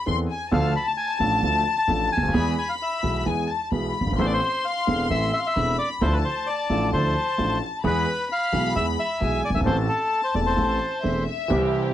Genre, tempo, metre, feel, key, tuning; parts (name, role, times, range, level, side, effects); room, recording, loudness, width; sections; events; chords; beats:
tango; 131 BPM; 4/4; rubato; A harmonic minor; A4 = 440 Hz
warm studio violin section; second line; 0.0-11.5 s; E5 to C6; -28 LUFS; left 6 dB
warm concert grand piano; accompaniment; 0.1-11.9 s; E1 to A4; -26 LUFS; right 1 dB
upright bass; bass; 0.1-11.9 s; E1 to E2; -26 LUFS; right 1 dB
bandoneon; melody; 0.5-11.2 s; A4 to B5; -25 LUFS; left 1 dB
dark studio string section; stabs; 11.5-11.9 s; C4 to G4; -29 LUFS; right 4 dB
light reverb; dry, close 1970s-style studio recording; -21 LUFS; side -12 dB against mid
0.0-11.5 A section
0.0 Amadd9/E; 0.5 Dm; 2.3 E; 4.2 Amadd9; 6.0 Dmadd9; 7.9 E; 9.7 Am
0.07 | 0.52 0.97 1.43 1.88 | 2.34 2.80 3.26 3.72 | 4.18 4.64 5.10 5.56 | 6.02 6.48 6.94 7.39 | 7.85 8.31 8.76 9.22 | 9.67 10.12 10.58 11.05 | 11.51